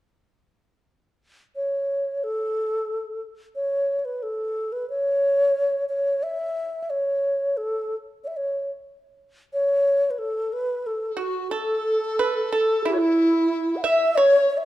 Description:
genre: chinese traditional, Chinese chamber ensemble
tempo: 91 BPM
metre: 2/4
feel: straight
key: A gong mode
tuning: A4 = 440 Hz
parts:
  - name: low xiao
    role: melody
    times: 1.6-14.7 s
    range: E4 to F#5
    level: -22 LUFS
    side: equal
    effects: none
  - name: mellow large dizi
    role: second line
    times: 11.1-14.5 s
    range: E4 to E5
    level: -25 LUFS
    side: left 2 dB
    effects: none
  - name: pipa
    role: second line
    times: 11.2-14.5 s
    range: E4 to E5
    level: -26 LUFS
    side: right 4 dB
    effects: none
room: moderate recital hall reverb, RT60 1.4 s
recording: dark, warm production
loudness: -21 LUFS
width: side -15 dB against mid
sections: 0.9-11.5 A section; 11.5-14.7 B section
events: none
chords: none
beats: | 0.90 1.56 | 2.22 2.89 | 3.55 4.21 | 4.88 5.54 | 6.22 6.88 | 7.55 8.20 | 8.86 9.52 | 10.18 10.85 | 11.52 12.18 | 12.85 13.51 | 14.16

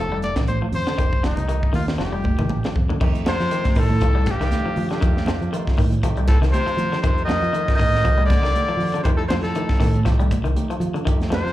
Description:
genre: afrobeat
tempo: 119 BPM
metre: 4/4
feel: swing 56% on 16ths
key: F mixolydian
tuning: A4 = 440 Hz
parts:
  - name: clear trumpet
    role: melody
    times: 0.0-11.5 s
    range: Eb4 to Eb5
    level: -25 LUFS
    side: left 2 dB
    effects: slapback echo
  - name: barky tine electric piano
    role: accompaniment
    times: 0.0-11.3 s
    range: A3 to G4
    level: -34 LUFS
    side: right 3 dB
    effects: overdrive, slapback echo
  - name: twangy electric guitar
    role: arpeggios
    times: 0.0-11.5 s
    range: D3 to G3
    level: -28 LUFS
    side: left 5 dB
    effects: none
  - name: fingered electric bass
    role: bass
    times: 0.0-11.5 s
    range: F1 to F3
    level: -22 LUFS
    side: equal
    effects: none
  - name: tight funk drum kit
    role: drums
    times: 0.2-11.5 s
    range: crash cymbal, hi-hat, kick drum, snare drum, toms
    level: -22 LUFS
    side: equal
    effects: none
  - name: congas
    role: percussion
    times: 0.2-11.5 s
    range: none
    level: -29 LUFS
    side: right 3 dB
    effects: none
  - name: raspy baritone saxophone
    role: second line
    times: 3.3-11.5 s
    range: G2 to Eb3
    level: -30 LUFS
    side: right 1 dB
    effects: slapback echo
room: studio reverb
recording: live gig heard through the venue's PA, club reverb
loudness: -18 LUFS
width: side -14 dB against mid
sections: 0.0-3.0 A section; 3.0-11.5 B section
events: drum fill 2.0-3.0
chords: 0.0 F9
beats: 0.48 | 0.98 1.49 1.99 2.50 | 3.00 3.50 4.01 4.51 | 5.01 5.52 6.02 6.53 | 7.03 7.54 8.04 8.54 | 9.05 9.55 10.05 10.56 | 11.06

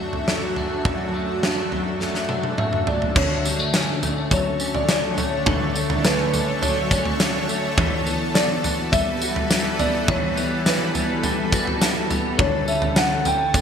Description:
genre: dream pop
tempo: 104 BPM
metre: 4/4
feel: straight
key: D major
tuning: A4 = 440 Hz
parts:
  - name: felt-muted upright piano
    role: melody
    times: 0.0-13.6 s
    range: B4 to G5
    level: -26 LUFS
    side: equal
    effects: wide subtle chorus, ping-pong delay
  - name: shimmering ambient pad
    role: sustained chords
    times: 0.0-13.6 s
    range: F#2 to E5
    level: -26 LUFS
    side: equal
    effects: chorus, built-in reverb
  - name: clean electric guitar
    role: arpeggios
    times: 0.0-13.6 s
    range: F#2 to F#4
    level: -26 LUFS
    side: left 3 dB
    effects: ensemble chorus, ping-pong delay
  - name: huge arena drum kit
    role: drums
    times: 0.1-13.6 s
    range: crash cymbal, kick drum, snare drum, tambourine, toms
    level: -22 LUFS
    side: right 1 dB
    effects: gated reverb
room: moderate lush hall reverb, RT60 2.4 s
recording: bright 1980s-style digital production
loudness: -19 LUFS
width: side -7 dB against mid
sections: 0.0-3.2 A section; 3.2-13.6 B section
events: drum fill 2.0-3.2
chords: 0.0 D/F#; 3.2 Dmaj7; 7.8 Emadd9; 12.4 Dmaj7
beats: 0.28 | 0.85 1.43 2.01 2.59 | 3.16 3.74 4.32 4.89 | 5.47 6.05 6.62 7.20 | 7.78 8.36 8.93 9.51 | 10.09 10.66 11.24 11.82 | 12.39 12.97 13.55

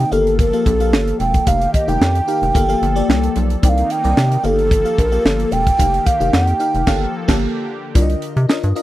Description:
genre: early-eighties boogie funk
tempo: 111 BPM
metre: 4/4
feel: straight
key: unclear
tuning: A4 = 439 Hz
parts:
  - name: breathy mellow round clay ocarina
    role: melody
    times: 0.0-7.1 s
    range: A4 to G5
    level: -18 LUFS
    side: right 2 dB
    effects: none
  - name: FM electric piano with soft pad layer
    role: accompaniment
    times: 0.0-8.8 s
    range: D3 to G5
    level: -22 LUFS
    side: left 4 dB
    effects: chorus, phaser
  - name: warm analog pad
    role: sustained chords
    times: 0.0-7.9 s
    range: D3 to A4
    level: -26 LUFS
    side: left 2 dB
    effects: chorus
  - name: rubbery square bass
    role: bass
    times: 0.0-8.7 s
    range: E1 to C3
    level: -18 LUFS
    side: equal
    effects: none
  - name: tight funk drum kit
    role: drums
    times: 0.0-8.8 s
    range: crash cymbal, hi-hat, kick drum, snare drum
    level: -17 LUFS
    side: equal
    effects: none
room: little or no reverb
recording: dry, close 1970s-style studio recording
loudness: -14 LUFS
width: side -15 dB against mid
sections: 0.0-8.0 A section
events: band accent 6.9-8.0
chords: 0.1 Gm9; 1.5 F9sus4; 2.5 Gm9; 3.6 Cm9; 4.4 Gm9; 5.8 F9sus4; 6.9 Gm9; 7.4 Bb6; 8.0 Cm11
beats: 0.39 0.93 | 1.47 2.01 2.55 3.09 | 3.63 4.17 4.71 5.25 | 5.79 6.33 6.87 7.41 | 7.95 8.49

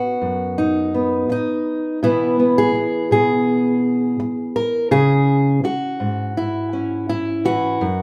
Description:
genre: folk, solo fingerstyle acoustic guitar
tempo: 83 BPM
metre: 4/4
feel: straight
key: unclear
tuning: A4 = 441 Hz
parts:
  - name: fingerpicked steel-string acoustic guitar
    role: solo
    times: 0.0-8.0 s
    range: F#2 to A#4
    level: -19 LUFS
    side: equal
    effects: none
room: moderate large studio reverb, RT60 1.1 s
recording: band playing live in one room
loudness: -19 LUFS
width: mono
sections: 0.0-8.0 A section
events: none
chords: 0.0 B; 2.0 E/B; 4.9 C#m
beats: 0.57 1.30 | 2.02 2.74 3.46 4.19 | 4.91 5.63 6.36 7.09 | 7.81

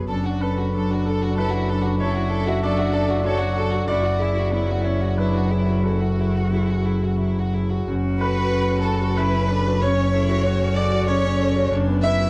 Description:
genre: neoclassical piano and strings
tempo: 94 BPM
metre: 3/4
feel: rubato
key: F# minor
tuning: A4 = 440 Hz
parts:
  - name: rich cello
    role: second line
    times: 0.0-12.3 s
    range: B3 to F#4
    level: -32 LUFS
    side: equal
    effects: none
  - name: clear concert grand piano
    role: accompaniment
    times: 0.0-12.3 s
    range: F#2 to E5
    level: -27 LUFS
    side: equal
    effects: none
  - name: rich double bass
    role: bass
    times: 0.0-12.3 s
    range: F#1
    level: -24 LUFS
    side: equal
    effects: none
  - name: rich chamber violin section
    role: melody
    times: 0.1-12.3 s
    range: E4 to E5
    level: -30 LUFS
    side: equal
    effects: none
room: light reverb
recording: dark, warm production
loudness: -21 LUFS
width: mono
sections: 0.0-7.9 A section; 7.9-12.3 B section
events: none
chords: 0.1 D/F#; 3.9 Eadd9/F#; 7.9 F#m; 11.7 Bsus4/F#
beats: | 0.09 0.73 1.37 | 2.00 2.63 3.25 | 3.88 4.52 5.17 | 5.84 6.53 7.21 | 7.88 8.53 9.18 | 9.82 10.45 11.09 | 11.72

